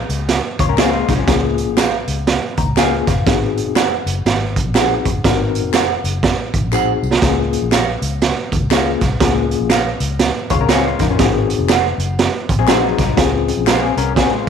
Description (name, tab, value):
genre	uptempo 1960s-style soul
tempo	121 BPM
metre	4/4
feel	swing 62% on 8ths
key	Db major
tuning	A4 = 440 Hz
part	vintage muted fingered electric bass	bass	0.0-14.3 s	F1 to F2	-21 LUFS	left 1 dB	none
part	raw garage drum kit	drums	0.1-14.3 s	hi-hat, kick drum, snare drum	-17 LUFS	right 4 dB	none
part	tambourine and handclaps	percussion	0.1-14.3 s	none	-30 LUFS	left 7 dB	none
part	electric guitar through a small old amp	riff	0.6-1.4, 10.5-14.5 s	F3 to Db5	-20 LUFS	left 11 dB	spring reverb
part	mellow tine electric piano	accompaniment	0.8-13.7 s	Bb3 to Bb5	-21 LUFS	left 11 dB	medium stereo tremolo
part	electric guitar through a small old amp	stabs	0.8-13.9 s	Ab4 to Gb5	-24 LUFS	right 9 dB	none
room	moderate plate reverb, RT60 1.6 s, small room ambience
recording	1960s-style stereo with parts hard left and right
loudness	-14 LUFS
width	side -7 dB against mid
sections	0.0-14.5 A section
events	tine electric piano fill 2.3-3.3; drum fill 6.7-7.2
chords	0.0 Db6; 3.3 Ab7; 7.2 Db6; 11.2 Ab7; 13.2 Dbmaj7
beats	0.29 0.78 | 1.28 1.77 2.27 2.77 | 3.26 3.76 4.25 4.75 | 5.24 5.74 6.23 6.73 | 7.22 7.72 8.22 8.71 | 9.21 9.70 10.20 10.70 | 11.19 11.69 12.18 12.68 | 13.17 13.67 14.16